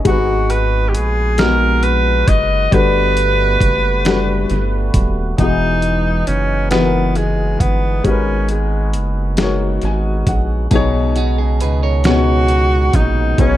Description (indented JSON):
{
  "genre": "slow six-eight R&B",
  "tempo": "45 BPM (dotted quarters)",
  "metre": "6/8",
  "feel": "straight",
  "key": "unclear",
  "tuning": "A4 = 443 Hz",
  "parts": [
    { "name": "dark baby grand piano", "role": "accompaniment", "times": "0.0-13.6 s", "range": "B2 to G#5", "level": "-20 LUFS", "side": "left 4 dB", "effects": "none" },
    { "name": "breathy tenor saxophone", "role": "melody", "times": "0.1-13.6 s", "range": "G#3 to D#5", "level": "-18 LUFS", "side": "equal", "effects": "tape echo" },
    { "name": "percussive tonewheel organ", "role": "sustained chords", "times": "0.1-13.6 s", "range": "C#3 to F#4", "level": "-27 LUFS", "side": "right 1 dB", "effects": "slow rotary speaker" },
    { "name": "rubbery square bass", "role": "bass", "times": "0.1-13.6 s", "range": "D#1 to C#2", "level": "-17 LUFS", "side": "right 1 dB", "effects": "none" },
    { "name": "dusty soul sampler-style drum kit", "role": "drums", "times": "0.1-13.6 s", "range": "hi-hat, kick drum, snare drum", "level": "-18 LUFS", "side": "right 1 dB", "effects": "none" },
    { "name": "clean electric guitar", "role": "second line", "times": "10.7-13.1 s", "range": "B3 to C#5", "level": "-25 LUFS", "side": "right 8 dB", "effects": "tape echo" }
  ],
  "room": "light reverb, digital ambience",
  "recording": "echo-heavy mix",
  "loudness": "-13 LUFS",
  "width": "side -13 dB against mid",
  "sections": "0.0-5.4 A section; 5.4-13.6 B section",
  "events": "tenor saxophone solo 5.4-13.6; grand piano fill 9.4-10.7",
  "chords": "0.1 G#m9; 2.7 Gmaj9; 5.4 Emaj7; 8.1 G#m7; 10.7 B69"
}